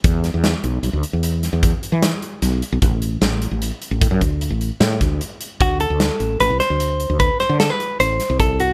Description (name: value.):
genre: progressive instrumental, band music in an uneven meter.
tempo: 151 BPM.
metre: 7/4.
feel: straight.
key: unclear.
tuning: A4 = 441 Hz.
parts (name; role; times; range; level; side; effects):
woody fretless electric bass; bass; 0.0-8.7 s; A1 to E3; -22 LUFS; equal; none.
big rock drum kit; drums; 0.0-8.7 s; hi-hat, kick drum, snare drum; -23 LUFS; equal; none.
hollow-body jazz guitar; melody; 5.6-8.7 s; F#4 to C5; -21 LUFS; equal; plate reverb.
room: light reverb.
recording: none.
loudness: -19 LUFS.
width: mono.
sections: 0.0-5.6 A section; 5.6-8.7 B section.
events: none.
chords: 0.0 E5; 2.8 Asus4; 5.6 D7(no3).